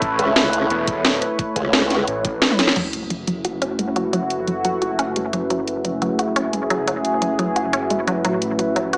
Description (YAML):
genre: dark technical drum and bass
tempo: 175 BPM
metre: 4/4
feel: straight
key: F# minor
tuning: A4 = 440 Hz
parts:
  - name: sweeping resonant pad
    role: sustained chords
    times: 0.0-9.0 s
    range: A3 to C#5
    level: -23 LUFS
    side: equal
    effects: chorus, sidechain pumping
  - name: wide detuned saw bass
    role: bass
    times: 0.0-9.0 s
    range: E1 to A1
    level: -31 LUFS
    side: equal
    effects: chorus, sidechain pumping
  - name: drum and bass drum kit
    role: drums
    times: 0.0-9.0 s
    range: crash cymbal, hi-hat, rim click, snare drum, toms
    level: -19 LUFS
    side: equal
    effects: overdrive, small room ambience
  - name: electronic kick drum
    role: drums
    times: 0.0-2.3 s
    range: none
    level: -26 LUFS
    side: equal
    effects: small room ambience
  - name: formant-sweep wobble bass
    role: bass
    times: 0.2-2.1 s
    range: C#2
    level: -21 LUFS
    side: equal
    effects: chorus
  - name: wide unison pluck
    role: arpeggios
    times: 2.8-9.0 s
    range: F#3 to F#4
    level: -23 LUFS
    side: equal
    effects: sidechain pumping, digital delay
  - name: sub drop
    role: sound effects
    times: 2.8-4.1 s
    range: none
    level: -42 LUFS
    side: equal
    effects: none
  - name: warbly tape-like pad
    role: texture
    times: 3.4-9.0 s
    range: C#4 to E5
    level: -24 LUFS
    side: equal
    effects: chorus, built-in reverb, sidechain pumping
room: moderate digital room reverb, RT60 1.1 s, digital ambience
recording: small speaker sound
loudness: -18 LUFS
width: side -30 dB against mid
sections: 0.0-2.8 A section; 2.8-9.0 B section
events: drop 0.0-2.8; drum fill 2.5; band accent 2.7; impact 2.8-4.1; filter sweep on synth arpeggio sound 2.8-9.0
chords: 0.0 A; 2.8 F#m7; 8.2 A